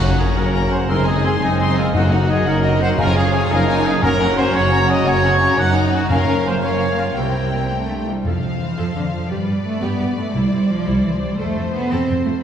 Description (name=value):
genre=cinematic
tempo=115 BPM (dotted quarters)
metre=6/8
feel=straight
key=Gb lydian, F lydian from 8.2 s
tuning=A4 = 440 Hz
part: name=warm symphonic violin section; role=melody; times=0.0-12.4 s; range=C5 to C6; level=-27 LUFS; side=left 4 dB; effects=none
part: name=dark clarinet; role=second line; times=0.0-8.1 s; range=Bb3 to Eb4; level=-28 LUFS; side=left 2 dB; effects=none
part: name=flute section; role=second line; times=0.0-8.1 s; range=F5 to Bb5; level=-30 LUFS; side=left 1 dB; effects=none
part: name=mellow oboe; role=second line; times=0.0-7.7 s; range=Eb4 to Gb5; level=-24 LUFS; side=left 1 dB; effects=none
part: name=rich studio violin section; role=second line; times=0.0-12.4 s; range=Bb3 to Eb5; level=-29 LUFS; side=left 2 dB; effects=none
part: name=warm symphonic viola section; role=accompaniment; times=0.0-12.3 s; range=Bb3 to A4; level=-28 LUFS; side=right 1 dB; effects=none
part: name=mellow French horn section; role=sustained chords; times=0.0-8.2 s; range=Bb3 to Bb4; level=-27 LUFS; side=left 3 dB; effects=none
part: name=warm trombone section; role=sustained chords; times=0.0-8.1 s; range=C3 to Bb3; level=-28 LUFS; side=right 1 dB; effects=none
part: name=concert harp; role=arpeggios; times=0.0-12.4 s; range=F2 to Bb5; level=-30 LUFS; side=left 4 dB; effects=none
part: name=dark trumpet section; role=stabs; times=0.0-7.7 s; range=Eb4 to Gb5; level=-24 LUFS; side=right 1 dB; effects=none
part: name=dark symphonic cello section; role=bass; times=0.0-12.3 s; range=Gb2 to C4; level=-22 LUFS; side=right 1 dB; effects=none
part: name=dark symphonic double bass section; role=bass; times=0.0-12.3 s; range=Gb1 to G2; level=-23 LUFS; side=right 2 dB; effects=none
part: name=timpani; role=percussion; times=0.0-11.9 s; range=F2 to C3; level=-26 LUFS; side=left 1 dB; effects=none
room=wet scoring stage reverb, RT60 2.0 s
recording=heard from further back in the room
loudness=-15 LUFS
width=side -8 dB against mid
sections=0.0-8.2 A section; 8.2-12.4 B section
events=none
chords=0.0 Gb; 0.9 Ab/Gb; 1.9 Ebm/Gb; 3.0 Db/Gb; 4.0 Gb; 6.1 Bbm/Gb; 7.2 C7; 8.2 F; 9.3 G; 10.3 Cadd9; 11.4 F